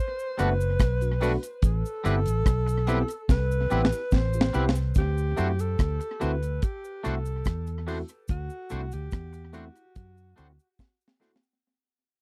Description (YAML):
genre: lovers rock reggae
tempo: 72 BPM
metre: 4/4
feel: straight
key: unclear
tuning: A4 = 440 Hz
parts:
  - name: warm alto saxophone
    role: melody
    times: 0.0-10.8 s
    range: F#4 to C5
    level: -35 LUFS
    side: equal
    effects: tape echo
  - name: cabasa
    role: percussion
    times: 0.2-11.6 s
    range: none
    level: -52 LUFS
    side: equal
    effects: none
  - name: barky tine electric piano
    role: accompaniment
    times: 0.4-11.3 s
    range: A3 to G4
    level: -33 LUFS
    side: equal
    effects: overdrive, phaser
  - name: twangy electric guitar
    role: stabs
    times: 0.4-11.3 s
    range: G3 to C5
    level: -35 LUFS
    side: equal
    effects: none
  - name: vintage muted fingered electric bass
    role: bass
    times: 0.4-10.6 s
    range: F#1 to F#2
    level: -30 LUFS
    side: equal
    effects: none
  - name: deep reggae drum kit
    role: drums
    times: 0.4-11.5 s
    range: hi-hat, kick drum, rim click, snare drum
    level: -27 LUFS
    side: equal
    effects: tape echo
room: little or no reverb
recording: dry, close 1970s-style studio recording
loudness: -27 LUFS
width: mono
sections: 0.0-5.0 A section; 5.0-11.6 B section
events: drum fill 3.3-5.0, 10.8-11.6; fade-out 5.0-11.6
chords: 0.0 Gmaj7; 1.6 Am9; 5.0 D7